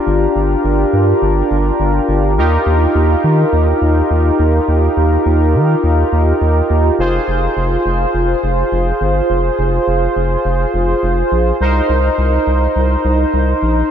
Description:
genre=synth-pop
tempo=104 BPM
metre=4/4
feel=straight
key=F dorian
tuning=A4 = 440 Hz
part: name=analog synth brass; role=accompaniment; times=0.0-13.9 s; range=D4 to C5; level=-14 LUFS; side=equal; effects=chorus
part: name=round analog bass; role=bass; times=0.1-13.8 s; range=F1 to Eb3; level=-15 LUFS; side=equal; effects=none
room=moderate huge ambient reverb, RT60 7.3 s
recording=dreamy mix soaked in reverb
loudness=-12 LUFS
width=side -8 dB against mid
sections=0.0-7.0 A section; 7.0-13.9 B section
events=none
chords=0.0 Gm7; 2.4 Ebadd9; 7.0 Fm; 11.6 Cm7

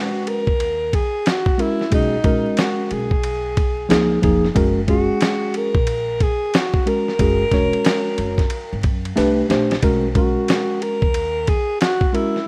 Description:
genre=hip hop, jazz-hop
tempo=91 BPM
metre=4/4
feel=swing 65% on 16ths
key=B major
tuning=A4 = 440 Hz
part: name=breathy alto saxophone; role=melody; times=0.0-12.5 s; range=D#4 to A#4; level=-25 LUFS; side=equal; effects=none
part: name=tine electric piano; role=accompaniment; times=0.0-12.4 s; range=E#3 to C#5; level=-22 LUFS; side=equal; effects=none
part: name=dusty soul sampler-style drum kit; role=drums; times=0.3-12.4 s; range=hi-hat, kick drum, ride cymbal, snare drum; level=-23 LUFS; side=equal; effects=none
part: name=upright bass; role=bass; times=0.5-11.5 s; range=E1 to F#2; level=-29 LUFS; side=equal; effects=none
room=light reverb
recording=rough home demo mix, vinyl crackle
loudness=-19 LUFS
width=mono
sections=0.0-9.8 A section; 9.8-12.5 A section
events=drum fill 9.2-9.8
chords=0.0 B69; 3.9 C#add9; 4.6 F#add9; 9.2 Csus2; 9.8 B69

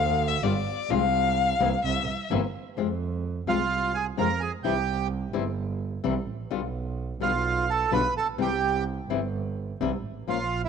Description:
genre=tango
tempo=128 BPM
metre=4/4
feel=rubato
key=F harmonic minor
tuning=A4 = 442 Hz
part: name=warm violin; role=second line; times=0.0-2.3 s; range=D5 to F5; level=-26 LUFS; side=left 7 dB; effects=none
part: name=warm double bass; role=bass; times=0.0-10.7 s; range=G1 to F2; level=-30 LUFS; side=right 5 dB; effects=none
part: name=flamenco guitar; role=accompaniment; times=0.4-10.4 s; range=B2 to F4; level=-30 LUFS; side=left 9 dB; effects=none
part: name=bandoneon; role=melody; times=3.5-10.7 s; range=E4 to B5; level=-26 LUFS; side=right 5 dB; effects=none
room=moderate plate reverb, RT60 2.4 s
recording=1960s-style stereo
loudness=-24 LUFS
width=side -6 dB against mid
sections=0.0-2.8 A section; 2.8-10.7 B section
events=violin solo 0.0-2.8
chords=0.0 G7(no3); 0.9 F5/C; 1.8 C; 2.8 Fm; 4.6 C; 6.5 G7/B; 8.4 C

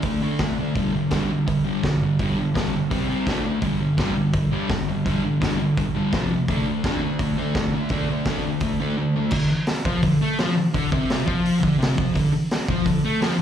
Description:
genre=garage rock duo or trio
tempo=169 BPM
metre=4/4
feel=straight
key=unclear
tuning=A4 = 439 Hz
part: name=fuzz guitar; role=riff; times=0.0-13.4 s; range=F2 to D4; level=-21 LUFS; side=equal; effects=distortion
part: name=vintage drum kit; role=drums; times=0.0-13.3 s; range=crash cymbal, hi-hat, kick drum, snare drum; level=-26 LUFS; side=equal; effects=none
room=wet club reverb, RT60 0.8 s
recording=live gig heard through the venue's PA, club reverb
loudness=-20 LUFS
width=side -9 dB against mid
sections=0.0-9.3 A section; 9.3-13.4 B section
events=none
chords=0.0 D5; 0.8 G5; 2.9 C5; 3.3 D5; 3.6 G5; 6.1 F5; 6.5 D5

